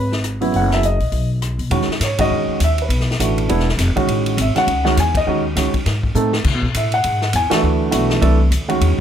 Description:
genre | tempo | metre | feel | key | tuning
jazz piano trio | 203 BPM | 4/4 | swing 60% on 8ths | E major | A4 = 440 Hz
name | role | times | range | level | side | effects
warm concert grand piano | melody | 0.0-9.0 s | C#3 to G#5 | -18 LUFS | right 2 dB | plate reverb
upright bass | bass | 0.0-9.0 s | E1 to C#3 | -18 LUFS | left 1 dB | none
swinging big-band drum kit | drums | 0.1-8.9 s | crash cymbal, hi-hat, kick drum, ride cymbal, rim click, snare drum | -24 LUFS | left 2 dB | none
room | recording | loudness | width
light reverb | none | -15 LUFS | side -9 dB against mid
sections
0.0-1.7 A section; 1.7-9.0 B section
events
band accent 5.1, 7.5; drum fill 6.1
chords
0.0 C#m7; 0.5 F#5; 1.1 N.C.; 1.7 Emaj9; 2.9 Bm7; 3.5 E7b9; 4.1 Amaj7; 5.3 D#m7; 5.9 G#; 6.4 C#m (rootless); 7.6 D9

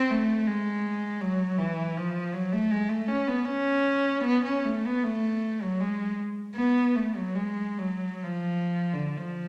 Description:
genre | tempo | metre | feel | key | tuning
classical, free, expressive piece for unaccompanied cello | 59-84 BPM | 3/4 | rubato | F# minor | A4 = 440 Hz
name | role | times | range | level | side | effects
warm cello | solo | 0.0-9.5 s | D3 to C#4 | -28 LUFS | equal | none
room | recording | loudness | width
wet recital hall reverb, RT60 1.5 s | none | -28 LUFS | mono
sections
0.0-9.5 A section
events
none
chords
none

